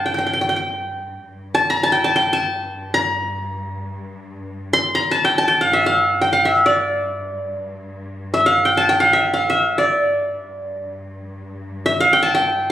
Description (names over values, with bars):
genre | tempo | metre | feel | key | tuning
Arabic maqam ensemble | free time | none | none | G maqam rast | A4 = 436 Hz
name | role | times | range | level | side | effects
qanun | melody | 0.0-12.7 s | D5 to C6 | -16 LUFS | equal | none
warm studio cello section | drone | 0.0-12.7 s | G2 | -33 LUFS | left 1 dB | none
room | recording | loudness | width
moderate recital hall reverb, RT60 1.5 s | recorded on a phone in the room, club reverb | -15 LUFS | side -12 dB against mid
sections
0.0-12.7 A section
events
none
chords
none